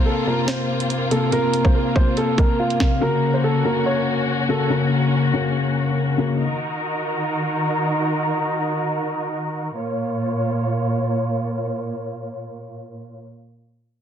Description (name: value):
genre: hip hop, drill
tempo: 142 BPM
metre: 4/4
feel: half-time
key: Bb minor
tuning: A4 = 440 Hz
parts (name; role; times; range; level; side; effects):
- dark upright piano; melody; 0.0-4.7 s; F4 to Db5; -23 LUFS; right 2 dB; low-pass filter, ping-pong delay
- felt-muted upright piano; accompaniment; 0.0-6.4 s; C3 to Bb4; -20 LUFS; left 3 dB; low-pass filter
- dark studio string section; sustained chords; 0.0-13.2 s; Bb2 to Db5; -24 LUFS; right 1 dB; none
- drill drum kit; drums; 0.5-2.9 s; hi-hat, kick drum, snare drum; -19 LUFS; right 1 dB; vintage 12-bit sampler grit
room: light reverb, studio ambience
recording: dense, heavily limited modern master, low-pass filter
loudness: -19 LUFS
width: side -8 dB against mid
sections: 0.0-9.8 A section; 9.8-13.2 B section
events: none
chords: 0.0 Bbsus2; 3.0 Gb; 6.4 Ebm; 9.8 Bbm